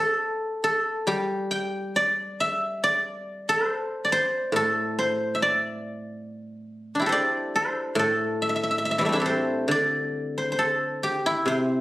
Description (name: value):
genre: chinese traditional, Chinese solo plucked strings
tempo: 70 BPM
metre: 4/4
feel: rubato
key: A yu mode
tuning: A4 = 440 Hz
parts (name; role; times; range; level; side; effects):
- guzheng; solo; 0.0-11.8 s; A2 to G5; -23 LUFS; equal; none
room: light reverb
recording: recorded on a phone in the room, studio reverb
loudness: -23 LUFS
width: side -17 dB against mid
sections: 0.0-11.8 A section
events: none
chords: none